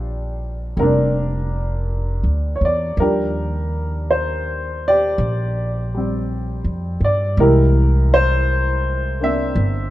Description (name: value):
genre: jazz ballad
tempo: 55 BPM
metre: 4/4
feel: swing 68% on 8ths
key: Eb major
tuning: A4 = 440 Hz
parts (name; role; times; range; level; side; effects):
- warm upright piano; accompaniment; 0.0-9.9 s; E3 to F5; -20 LUFS; equal; none
- upright bass; bass; 0.0-9.9 s; F1 to G2; -20 LUFS; equal; none
room: light reverb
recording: dark, warm production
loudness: -17 LUFS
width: side -15 dB against mid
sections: 0.0-3.0 A section; 3.0-9.9 B section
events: none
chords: 0.0 Bb6; 3.0 Ebmaj9; 7.4 C7b13